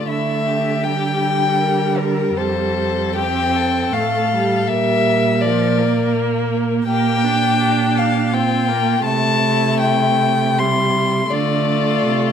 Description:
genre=classical, slow romantic movement for string quartet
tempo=73-84 BPM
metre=3/4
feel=rubato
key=unclear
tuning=A4 = 440 Hz
part: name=warm violin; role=melody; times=0.0-12.3 s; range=E4 to Bb4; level=-24 LUFS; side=left 10 dB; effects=none
part: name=dark violin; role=second line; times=0.0-12.3 s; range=Bb4 to C6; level=-19 LUFS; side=left 4 dB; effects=none
part: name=rich viola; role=accompaniment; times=0.0-12.3 s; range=F3 to D4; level=-21 LUFS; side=right 2 dB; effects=none
part: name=rich cello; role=bass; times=0.0-12.3 s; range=F2 to D3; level=-21 LUFS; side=right 6 dB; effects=none
room=moderate recital hall reverb, RT60 1.5 s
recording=none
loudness=-15 LUFS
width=side -8 dB against mid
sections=0.0-12.3 A section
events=none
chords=0.1 Gm69/D; 2.4 F; 4.7 Bb; 6.9 Gm/Bb; 9.0 C; 11.3 Dm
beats=| 0.08 0.83 1.60 | 2.36 3.16 3.93 | 4.68 5.42 6.14 | 6.87 7.60 8.33 | 9.05 9.80 10.58 | 11.31 12.07

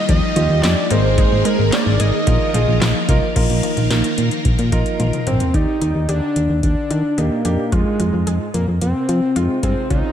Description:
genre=synth-pop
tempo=110 BPM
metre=4/4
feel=straight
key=Eb major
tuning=A4 = 440 Hz
part: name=fat analog lead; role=melody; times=0.0-10.1 s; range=Ab3 to Eb5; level=-21 LUFS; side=equal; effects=chorus, ping-pong delay
part: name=string machine, violins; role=sustained chords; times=0.0-5.5 s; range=Eb3 to Bb4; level=-22 LUFS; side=equal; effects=ensemble chorus
part: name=analog pluck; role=arpeggios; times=0.0-10.1 s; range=F3 to Ab4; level=-27 LUFS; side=equal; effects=chorus, ping-pong delay
part: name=solid FM bass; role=bass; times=0.1-10.0 s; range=Ab1 to F3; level=-18 LUFS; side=equal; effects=none
part: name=electro analog drum machine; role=drums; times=0.1-10.0 s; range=crash cymbal, handclaps, hi-hat, kick drum, snare drum, toms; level=-20 LUFS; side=equal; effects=none
part: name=warm baby grand piano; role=accompaniment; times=0.4-10.1 s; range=Ab3 to D5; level=-25 LUFS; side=right 2 dB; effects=none
room=moderate lush hall reverb, RT60 2.1 s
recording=dreamy mix soaked in reverb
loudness=-15 LUFS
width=side -9 dB against mid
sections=0.0-3.4 A section; 3.4-5.5 B section; 5.5-10.1 C section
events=drum fill 5.0-5.5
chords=0.0 Ebadd9; 0.9 Absus2; 2.3 Bbsus4; 5.5 Ebmaj7; 7.7 Fm7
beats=0.09 0.63 | 1.18 1.72 2.27 2.81 | 3.36 3.91 4.45 5.00 | 5.54 6.09 6.63 7.18 | 7.72 8.27 8.81 9.36 | 9.91

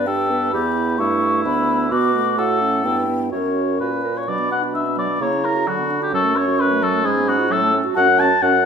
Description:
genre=quick classical-period movement for wind quintet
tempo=130 BPM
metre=2/4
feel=straight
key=B minor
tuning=A4 = 440 Hz
part: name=mellow hollow concert flute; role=melody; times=0.0-8.7 s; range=A#4 to D6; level=-25 LUFS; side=left 3 dB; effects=none
part: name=mellow oboe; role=second line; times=0.0-8.7 s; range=E4 to A5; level=-20 LUFS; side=left 3 dB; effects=none
part: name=dark French horn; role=accompaniment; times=0.0-8.5 s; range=A3 to E4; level=-26 LUFS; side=right 1 dB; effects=none
part: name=warm clarinet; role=accompaniment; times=0.0-8.5 s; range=F#3 to B4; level=-25 LUFS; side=right 10 dB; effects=none
part: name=warm bassoon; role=bass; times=0.0-8.7 s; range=D2 to D3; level=-24 LUFS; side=right 4 dB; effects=none
room=moderate recital hall reverb, RT60 1.6 s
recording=minimal, uncompressed stereo recording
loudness=-16 LUFS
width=side -6 dB against mid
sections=0.0-4.3 A section; 4.3-8.7 B section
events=none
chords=0.0 G; 0.5 Em; 1.5 Bm/D; 1.9 Bm; 2.4 F#m/A; 2.8 Em/G; 3.3 F#; 4.3 Bm; 5.2 F#7/C#; 5.7 Bm/D; 6.1 F#m; 7.1 C#7/G#; 7.5 F#m/A; 8.0 F#m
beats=0.08 | 0.54 0.99 | 1.45 1.92 | 2.38 2.84 | 3.32 3.80 | 4.28 4.74 | 5.21 5.67 | 6.14 6.60 | 7.05 7.51 | 7.97 8.42

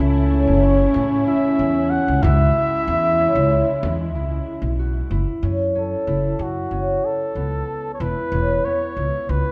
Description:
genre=contemporary instrumental, chamber music in an uneven meter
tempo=187 BPM (eighths)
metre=9/8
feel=straight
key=F# minor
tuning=A4 = 443 Hz
part: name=mellow flugelhorn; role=melody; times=0.0-9.5 s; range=F#4 to F#5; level=-27 LUFS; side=equal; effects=none
part: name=mellow French horn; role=second line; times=0.0-4.8 s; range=C#4 to E4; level=-23 LUFS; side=equal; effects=none
part: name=muted studio string section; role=sustained chords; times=0.0-5.1 s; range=C#3 to E4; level=-35 LUFS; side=equal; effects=none
part: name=concert harp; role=arpeggios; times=0.0-9.5 s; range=B3 to F#4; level=-27 LUFS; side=equal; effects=none
part: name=upright bass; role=bass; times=0.0-9.4 s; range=E1 to A2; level=-24 LUFS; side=equal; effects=none
part: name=frame drum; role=percussion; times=0.3-4.1 s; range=none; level=-29 LUFS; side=equal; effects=none
room=moderate recital hall reverb, RT60 1.6 s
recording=dark, warm production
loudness=-20 LUFS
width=mono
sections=0.0-5.1 A section; 5.1-9.5 B section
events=none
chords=0.0 A; 2.2 C#m; 5.1 F#m7; 8.0 E5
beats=0.30 0.62 0.94 1.26 1.58 1.90 | 2.22 2.54 2.87 3.19 3.51 3.83 4.15 4.47 4.79 | 5.11 5.43 5.75 6.07 6.39 6.71 7.04 7.36 7.68 | 8.00 8.32 8.64 8.97 9.29

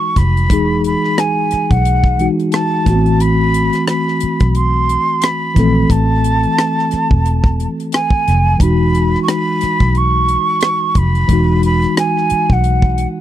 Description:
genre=R&B, neo-soul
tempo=89 BPM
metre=4/4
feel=swing 57% on 16ths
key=E major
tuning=A4 = 438 Hz
part: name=breathy mellow jazz flute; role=melody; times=0.0-13.1 s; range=F#5 to C#6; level=-17 LUFS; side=right 2 dB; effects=none
part: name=mellow tine electric piano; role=accompaniment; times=0.0-13.2 s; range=E3 to A4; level=-17 LUFS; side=left 2 dB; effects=medium stereo tremolo
part: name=vintage muted fingered electric bass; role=bass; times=0.2-13.1 s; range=E1 to B1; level=-15 LUFS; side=equal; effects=none
part: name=tight funk drum kit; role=drums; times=0.2-13.2 s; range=hi-hat, kick drum, rim click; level=-15 LUFS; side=equal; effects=none
room=little or no reverb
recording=dry, close 1970s-style studio recording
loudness=-12 LUFS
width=side -12 dB against mid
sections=0.0-13.2 A section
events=none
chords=0.0 Emaj9; 2.9 Am6; 8.6 Emaj9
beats=| 0.51 1.18 1.85 2.53 | 3.20 3.88 4.55 5.22 | 5.90 6.57 7.25 7.92 | 8.60 9.27 9.94 10.62 | 11.29 11.97 12.64

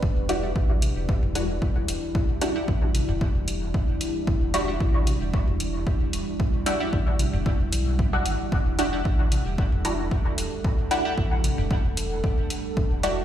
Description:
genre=dub techno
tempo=113 BPM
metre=4/4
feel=swing 53% on 16ths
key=E minor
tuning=A4 = 443 Hz
part: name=deep dark ambient pad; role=sustained chords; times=0.0-13.2 s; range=G3 to A4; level=-31 LUFS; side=right 1 dB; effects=chorus, built-in reverb, sidechain pumping
part: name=soft dub sub bass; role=bass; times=0.0-13.2 s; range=E1 to B1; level=-27 LUFS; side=equal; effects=sidechain pumping
part: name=electronic kick drum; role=drums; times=0.0-12.9 s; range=none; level=-24 LUFS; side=equal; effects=none
part: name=wavetable chord stab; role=riff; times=0.3-13.1 s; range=G4 to F#5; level=-36 LUFS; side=right 2 dB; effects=sidechain pumping, dub echo
part: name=filtered dub chord stab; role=stabs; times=0.3-13.2 s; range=G3 to F#4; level=-30 LUFS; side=equal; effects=chorus, phaser, sidechain pumping, dub echo
part: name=electronic hi-hat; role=drums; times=0.3-13.1 s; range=none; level=-33 LUFS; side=equal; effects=overdrive
part: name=electronic toms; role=percussion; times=0.8-11.7 s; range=none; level=-32 LUFS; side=left 1 dB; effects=overdrive, sidechain pumping on toms, dub echo
room=light reverb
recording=played on a big sound system in a bare room, large studio reverb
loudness=-22 LUFS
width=side -11 dB against mid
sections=0.0-13.2 A section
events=none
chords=0.0 Em9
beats=| 0.03 0.56 1.09 1.62 | 2.15 2.68 3.21 3.74 | 4.27 4.80 5.34 5.87 | 6.40 6.93 7.46 7.99 | 8.52 9.05 9.58 10.11 | 10.64 11.18 11.71 12.24 | 12.77

